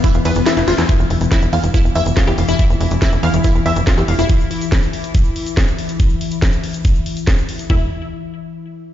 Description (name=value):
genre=psychedelic trance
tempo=141 BPM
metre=4/4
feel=straight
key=unclear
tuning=A4 = 441 Hz
part: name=evolving wavetable pad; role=sustained chords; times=0.0-7.7 s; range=E3 to E4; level=-22 LUFS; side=left 3 dB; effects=chorus, built-in reverb, sidechain pumping
part: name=wide unison pluck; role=riff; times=0.0-4.2, 7.7-7.9 s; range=E4 to F5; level=-21 LUFS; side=moving between left 3 dB and right 3 dB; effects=auto-pan, cassette tape, sidechain pumping, tape echo
part: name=drum and bass drum kit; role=drums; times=0.0-7.7 s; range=hi-hat, ride cymbal, snare drum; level=-24 LUFS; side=equal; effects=none
part: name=electronic kick drum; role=drums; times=0.0-7.8 s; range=none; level=-15 LUFS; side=equal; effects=none
part: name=egg shaker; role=percussion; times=0.0-7.7 s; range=none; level=-37 LUFS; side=left 3 dB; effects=none
part: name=tight sequencer bass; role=bass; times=0.1-4.3, 7.7-7.9 s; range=D1 to E2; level=-17 LUFS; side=equal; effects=none
room=light reverb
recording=played on a big sound system in a bare room, stone room reverb, nothing above 7.5 kHz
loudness=-14 LUFS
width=side -12 dB against mid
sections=0.9-7.7 A section; 7.7-8.9 B section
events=kick drops out 0.5-0.9; drum fill 0.6-0.9; band accent 0.8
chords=0.0 E5; 0.9 N.C.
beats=0.04 0.47 | 0.89 1.32 1.74 2.17 | 2.59 3.02 3.44 3.87 | 4.29 4.72 5.15 5.57 | 6.00 6.42 6.85 7.27 | 7.70